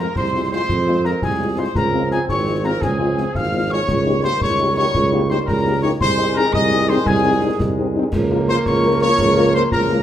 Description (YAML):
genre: military-style march for wind band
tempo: 113 BPM (dotted quarters)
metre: 6/8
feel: straight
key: Ab major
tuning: A4 = 440 Hz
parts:
  - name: warm trumpet section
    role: melody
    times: 0.0-10.0 s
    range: Ab4 to F5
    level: -23 LUFS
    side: equal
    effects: none
  - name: piccolo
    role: second line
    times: 0.0-10.0 s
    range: Ab5 to F6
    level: -24 LUFS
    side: left 3 dB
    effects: none
  - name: mellow French horn section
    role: accompaniment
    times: 0.0-10.0 s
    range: Ab3 to Bb4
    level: -24 LUFS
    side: left 4 dB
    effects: none
  - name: warm trombone section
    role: sustained chords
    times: 0.0-10.0 s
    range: Eb3 to C4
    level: -25 LUFS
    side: equal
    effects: none
  - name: mellow tuba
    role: bass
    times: 0.0-10.0 s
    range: Ab1 to F2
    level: -20 LUFS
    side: right 3 dB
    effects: none
  - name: concert snare drum, concert bass drum and clash cymbals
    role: drums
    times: 0.2-10.0 s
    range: none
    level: -26 LUFS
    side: left 1 dB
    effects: none
room: wet large studio reverb, RT60 0.8 s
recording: none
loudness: -15 LUFS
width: side -10 dB against mid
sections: 0.0-10.0 A section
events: none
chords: 0.0 Fm; 1.8 Dbmaj7; 3.9 Eb7/Db; 6.0 Ab/C; 8.1 Bbm/Db